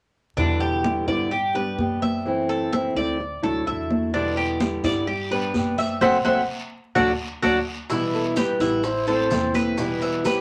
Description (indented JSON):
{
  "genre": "latin, Cuban son and guajira",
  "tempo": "128 BPM",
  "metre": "4/4",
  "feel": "straight",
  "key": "E minor",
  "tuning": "A4 = 440 Hz",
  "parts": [
    { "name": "fingerpicked steel-string acoustic guitar", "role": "accompaniment", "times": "0.4-10.4 s", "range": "B2 to G4", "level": "-28 LUFS", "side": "equal", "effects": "none" },
    { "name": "Cuban tres", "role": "arpeggios", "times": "0.4-10.4 s", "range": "D4 to F#5", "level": "-27 LUFS", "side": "equal", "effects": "none" },
    { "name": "upright bass", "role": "bass", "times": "0.4-10.4 s", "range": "E1 to G2", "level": "-34 LUFS", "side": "equal", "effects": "none" },
    { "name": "congas", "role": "percussion", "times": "0.4-10.4 s", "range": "none", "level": "-30 LUFS", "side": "equal", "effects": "none" },
    { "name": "guiro", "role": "percussion", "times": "4.1-10.4 s", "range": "none", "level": "-40 LUFS", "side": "equal", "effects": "none" },
    { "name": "bongos", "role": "percussion", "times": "7.9-10.4 s", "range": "none", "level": "-37 LUFS", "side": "equal", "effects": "none" },
    { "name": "maracas", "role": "percussion", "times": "7.9-10.4 s", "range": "none", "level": "-44 LUFS", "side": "equal", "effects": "none" },
    { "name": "trumpet with bucket mute", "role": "melody", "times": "8.1-10.4 s", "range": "G4 to C5", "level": "-28 LUFS", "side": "equal", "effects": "none" }
  ],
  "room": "moderate club reverb, RT60 0.7 s",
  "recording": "vinyl crackle",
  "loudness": "-23 LUFS",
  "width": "mono",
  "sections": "0.4-7.9 A section; 7.9-10.4 B section",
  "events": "band accent 6.0-7.9",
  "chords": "0.4 Em7; 1.3 G; 2.3 F#m7b5; 3.2 Dadd9; 4.1 Em7; 5.1 G; 6.0 F#m7b5; 7.0 D; 7.9 Em; 8.8 Am; 9.8 Em"
}